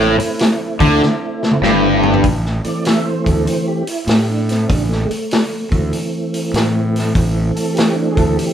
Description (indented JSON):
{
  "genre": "blues rock power trio and southern rock",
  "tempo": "98 BPM",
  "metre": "4/4",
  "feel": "swing 66% on 8ths",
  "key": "A minor",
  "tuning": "A4 = 443 Hz",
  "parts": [
    { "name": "tonewheel organ", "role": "sustained chords", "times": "0.0-8.5 s", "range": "E3 to E5", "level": "-20 LUFS", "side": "right 2 dB", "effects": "chorus vibrato, slow rotary speaker" },
    { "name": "cranked stack guitar", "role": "riff", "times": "0.0-2.2 s", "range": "G2 to D3", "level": "-14 LUFS", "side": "left 1 dB", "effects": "overdrive, spring reverb" },
    { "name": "fuzz fingered electric bass", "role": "bass", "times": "0.0-8.4 s", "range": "G1 to A2", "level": "-19 LUFS", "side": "equal", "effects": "overdrive" },
    { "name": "vintage drum kit", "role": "drums", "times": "0.0-8.5 s", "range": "hi-hat, kick drum, snare drum, toms", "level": "-18 LUFS", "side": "equal", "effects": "none" }
  ],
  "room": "light reverb",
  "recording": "band playing live in one room",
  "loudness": "-14 LUFS",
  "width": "side -9 dB against mid",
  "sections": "0.0-2.2 A section; 2.2-8.5 B section",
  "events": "drum fill 1.0-2.2; tonewheel organ solo 2.2-8.5",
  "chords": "0.0 Am",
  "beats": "0.39 1.01 1.62 | 2.24 2.85 3.47 4.08 | 4.70 5.31 5.93 6.54 | 7.16 7.77 8.38"
}